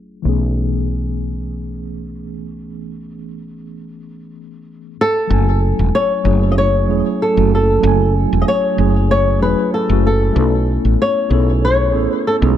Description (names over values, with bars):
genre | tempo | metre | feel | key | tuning
sunset chillout | 95 BPM | 4/4 | swing 55% on 16ths | unclear | A4 = 442 Hz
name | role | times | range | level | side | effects
mellow tine electric piano | accompaniment | 0.0-12.6 s | E3 to G#5 | -20 LUFS | moving between left 8 dB and right 8 dB | slow stereo tremolo, auto-pan, ping-pong delay
woody fretless electric bass | bass | 0.0-12.6 s | E1 to B1 | -16 LUFS | equal | none
flamenco guitar | melody | 5.0-12.4 s | A4 to D#5 | -17 LUFS | left 1 dB | ping-pong delay
room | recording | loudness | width
light reverb | dark, warm production, low-pass filter | -13 LUFS | side -10 dB against mid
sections
0.0-5.3 A section; 5.3-12.6 B section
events
filter sweep 0.0-5.3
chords
0.3 B13sus4; 5.0 N.C.; 5.3 F#m9; 10.4 B13sus4